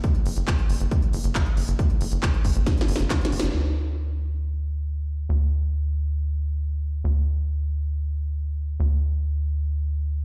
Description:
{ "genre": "uplifting trance", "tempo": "137 BPM", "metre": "4/4", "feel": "straight", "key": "unclear", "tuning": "A4 = 440 Hz", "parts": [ { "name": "electronic kick drum", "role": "drums", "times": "0.0-3.2 s", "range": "none", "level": "-25 LUFS", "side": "equal", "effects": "none" }, { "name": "techno drum kit", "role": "drums", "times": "0.0-3.5 s", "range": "handclaps, hi-hat, snare drum", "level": "-32 LUFS", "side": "equal", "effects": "sidechain pumping on hats" }, { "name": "tight sequencer bass", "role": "bass", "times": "0.3-10.2 s", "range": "F#1 to D2", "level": "-26 LUFS", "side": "equal", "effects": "sidechain pumping" } ], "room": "little or no reverb", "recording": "played on a big sound system in a bare room, stone room reverb", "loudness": "-25 LUFS", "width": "mono", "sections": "0.0-3.5 A section; 3.5-10.2 B section", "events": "drum fill 2.7-3.5; band accent 3.4", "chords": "none", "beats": "| 0.04 0.48 0.92 1.35 | 1.79 2.23 2.67 3.10 | 3.54 3.98 4.42 4.86 | 5.29 5.73 6.17 6.61 | 7.05 7.48 7.92 8.36 | 8.80 9.24 9.67 10.11" }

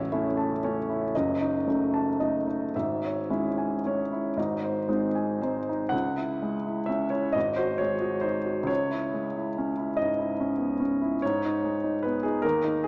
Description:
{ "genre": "classical, romantic nocturne for solo piano", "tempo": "36-50 BPM (dotted quarters)", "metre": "6/8", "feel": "rubato", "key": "C# minor", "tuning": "A4 = 441 Hz", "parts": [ { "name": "warm grand piano", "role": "solo", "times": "0.0-12.9 s", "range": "A0 to A5", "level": "-25 LUFS", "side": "equal", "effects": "none" } ], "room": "moderate concert hall reverb, RT60 2.0 s", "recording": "small speaker sound", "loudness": "-25 LUFS", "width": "side -34 dB against mid", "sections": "0.0-5.9 A section; 5.9-12.9 B section", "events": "none", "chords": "0.0 A; 1.1 D#dim/F#; 2.7 C#m/G#; 4.4 G#; 5.9 C#m; 7.4 G#5; 8.7 C#m; 11.2 G#m", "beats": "1.13 | 2.73 4.37 | 5.93 7.35 | 8.69 9.98 | 11.22 12.44" }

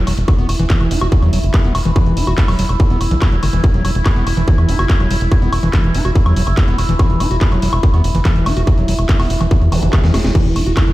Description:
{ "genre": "psychedelic trance", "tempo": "143 BPM", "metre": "4/4", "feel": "straight", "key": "unclear", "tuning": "A4 = 441 Hz", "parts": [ { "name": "overtone-sweeping drone", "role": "sustained chords", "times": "0.0-10.9 s", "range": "E4 to A4", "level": "-24 LUFS", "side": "right 1 dB", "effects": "chorus, built-in reverb, sidechain pumping" }, { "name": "overdriven acid bass", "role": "riff", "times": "0.0-10.9 s", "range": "D#3 to F#4", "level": "-22 LUFS", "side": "moving between left 3 dB and right 3 dB", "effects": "distortion, auto-pan, sidechain pumping, dub echo" }, { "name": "tight sequencer bass", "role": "bass", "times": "0.0-10.9 s", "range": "E1 to E2", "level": "-16 LUFS", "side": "equal", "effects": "none" }, { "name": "techno drum kit", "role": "drums", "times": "0.1-10.9 s", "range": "crash cymbal, handclaps, hi-hat, snare drum, woodblock", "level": "-23 LUFS", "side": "equal", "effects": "none" }, { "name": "electronic kick drum", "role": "drums", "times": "0.3-10.9 s", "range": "none", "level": "-14 LUFS", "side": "equal", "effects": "distortion" }, { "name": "zap", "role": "sound effects", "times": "9.7-9.8 s", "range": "none", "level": "-29 LUFS", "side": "equal", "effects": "none" } ], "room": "digital ambience", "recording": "played on a big sound system in a bare room, stone room reverb", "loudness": "-12 LUFS", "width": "side -17 dB against mid", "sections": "0.0-10.9 A section", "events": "drum fill 10.0-10.3", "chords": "0.0 E5", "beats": "| 0.28 0.70 1.12 1.54 | 1.96 2.38 2.80 3.22 | 3.64 4.06 4.48 4.90 | 5.32 5.74 6.15 6.57 | 6.99 7.41 7.83 8.25 | 8.67 9.09 9.51 9.93 | 10.35 10.77" }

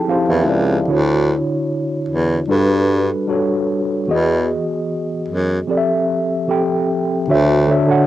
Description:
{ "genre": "contemporary R&B", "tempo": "75 BPM", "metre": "4/4", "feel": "straight", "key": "D major", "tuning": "A4 = 440 Hz", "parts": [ { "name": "mellow tine electric piano", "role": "accompaniment", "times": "0.0-8.1 s", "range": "D3 to A5", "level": "-16 LUFS", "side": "equal", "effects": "medium stereo tremolo, cassette tape" }, { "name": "warm baritone saxophone", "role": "bass", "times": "0.3-7.7 s", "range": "C#2 to G2", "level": "-17 LUFS", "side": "equal", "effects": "none" } ], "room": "moderate booth ambience, RT60 0.2 s", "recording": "home recording on cassette", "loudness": "-15 LUFS", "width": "side -14 dB against mid", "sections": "0.0-7.3 A section", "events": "tine electric piano fill 0.0-0.9", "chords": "0.0 Fmaj9; 0.9 Dmaj9; 2.5 Gmaj9; 4.1 Emaj9; 5.7 Fmaj9; 7.3 Dmaj9", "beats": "0.08 | 0.88 1.68 2.48 3.28 | 4.08 4.88 5.68 6.48 | 7.28" }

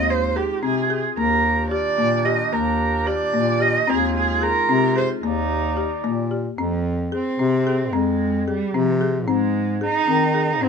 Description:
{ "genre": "contemporary instrumental, chamber music in an uneven meter", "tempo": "222 BPM (eighths)", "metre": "5/8", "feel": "straight", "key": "unclear", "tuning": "A4 = 440 Hz", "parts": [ { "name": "warm cello", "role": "melody", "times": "0.0-10.7 s", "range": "F3 to Eb5", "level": "-22 LUFS", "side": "right 5 dB", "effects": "none" }, { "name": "dark woodwind section", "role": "sustained chords", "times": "0.0-6.6 s", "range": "Eb3 to D5", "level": "-29 LUFS", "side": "left 1 dB", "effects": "none" }, { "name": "folk marimba with medium mallets", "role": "arpeggios", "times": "0.0-10.7 s", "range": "Bb3 to Ab4", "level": "-24 LUFS", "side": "left 8 dB", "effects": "none" }, { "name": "warm bass clarinet", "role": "bass", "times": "0.0-10.7 s", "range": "Eb2 to Eb3", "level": "-24 LUFS", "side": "equal", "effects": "none" } ], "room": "light reverb", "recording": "close, detailed microphones", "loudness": "-18 LUFS", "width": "side -6 dB against mid", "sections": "0.0-6.6 A section; 6.6-10.7 B section", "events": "none", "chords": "0.0 Fm7/Eb; 1.2 Ebmaj9; 3.9 Fm7/Eb; 5.2 Ebmaj7; 6.6 Fm; 9.3 Ab", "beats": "0.09 0.36 0.63 0.90 | 1.17 1.44 1.71 1.98 2.25 | 2.52 2.79 3.06 3.34 3.61 | 3.88 4.15 4.42 4.69 4.96 | 5.23 5.50 5.77 6.04 6.31 | 6.58 6.85 7.12 7.39 7.66 | 7.93 8.20 8.47 8.74 9.01 | 9.28 9.55 9.82 10.09 10.36 | 10.63" }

